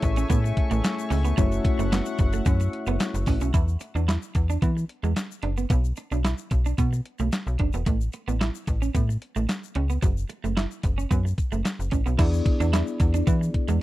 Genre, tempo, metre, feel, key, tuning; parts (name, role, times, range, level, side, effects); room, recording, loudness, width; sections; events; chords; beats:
early-eighties boogie funk; 111 BPM; 4/4; straight; A4 = 440 Hz
mellow tine electric piano; accompaniment; 0.0-3.5, 12.2-13.8 s; A3 to D5; -30 LUFS; left 3 dB; medium stereo tremolo
chorused pulse-width pad; sustained chords; 0.0-3.5 s; A3 to C#6; -34 LUFS; left 2 dB
electric guitar at the edge of break-up; riff; 0.0-13.8 s; F#3 to E4; -32 LUFS; right 8 dB; wide subtle chorus
slap-like FM bass; bass; 0.0-13.8 s; E1 to E3; -24 LUFS; equal
crisp 8-bit digital drum machine; drums; 0.0-13.8 s; crash cymbal, handclaps, hi-hat, kick drum, snare drum; -24 LUFS; equal
egg shaker; percussion; 0.0-13.8 s; -46 LUFS; left 18 dB
digital ambience; dry, close 1970s-style studio recording; -22 LUFS; side -16 dB against mid
0.0-3.5 A section; 3.5-12.2 B section; 12.2-13.8 A section
0.0 Amaj7; 1.4 F#m7; 3.5 E7(no3); 5.7 Bm; 7.9 A; 10.0 F#m; 12.2 E7
0.30 0.84 | 1.38 1.92 2.46 3.00 | 3.54 4.08 4.62 5.16 | 5.70 6.24 6.78 7.32 | 7.87 8.41 8.95 9.49 | 10.03 10.57 11.11 11.65 | 12.19 12.73 13.27 13.81